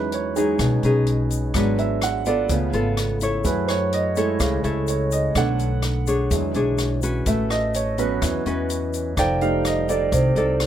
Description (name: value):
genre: bossa nova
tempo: 126 BPM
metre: 4/4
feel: straight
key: E major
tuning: A4 = 439 Hz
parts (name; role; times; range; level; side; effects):
- nylon-string guitar; accompaniment; 0.0-10.7 s; B2 to D5; -23 LUFS; left 2 dB; none
- warm baby grand piano; accompaniment; 0.0-10.7 s; D3 to G5; -24 LUFS; right 6 dB; none
- upright bass; bass; 0.0-10.7 s; F1 to F#2; -25 LUFS; equal; none
- open jazz drum kit; drums; 0.1-10.7 s; hi-hat, kick drum, rim click; -28 LUFS; left 1 dB; none
- egg shaker; percussion; 0.4-10.6 s; none; -37 LUFS; left 9 dB; none
room: light reverb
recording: none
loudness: -19 LUFS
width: side -10 dB against mid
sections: 0.0-10.7 A section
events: grand piano solo 0.0-10.7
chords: 0.0 Emaj13; 1.5 G#m7b5; 2.5 C#7b13; 3.5 F#m7; 5.4 Bm9; 6.3 E13; 7.3 A69; 9.2 F13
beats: 0.12 0.59 1.07 | 1.55 2.02 2.50 2.98 | 3.45 3.93 4.41 4.88 | 5.36 5.84 6.31 6.79 | 7.27 7.75 8.22 8.70 | 9.18 9.65 10.13 10.61